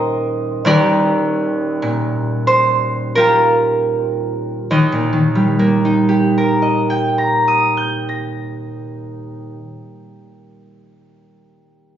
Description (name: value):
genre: classical, solo harp piece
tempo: 36-57 BPM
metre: 3/4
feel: rubato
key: Eb major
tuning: A4 = 441 Hz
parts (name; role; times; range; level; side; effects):
- concert harp; solo; 0.0-10.3 s; Eb1 to Bb6; -14 LUFS; right 1 dB; none
room: wet recital hall reverb, RT60 1.7 s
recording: recorded on a phone in the room, studio reverb, nothing above 7.6 kHz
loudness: -14 LUFS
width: side -10 dB against mid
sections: 0.0-4.7 A section; 4.7-8.8 B section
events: slowing down 0.0-4.7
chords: 0.0 Eb69; 0.7 Gm7/Eb; 4.7 Eb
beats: | 0.66 1.84 3.17 | 4.71 6.09 7.47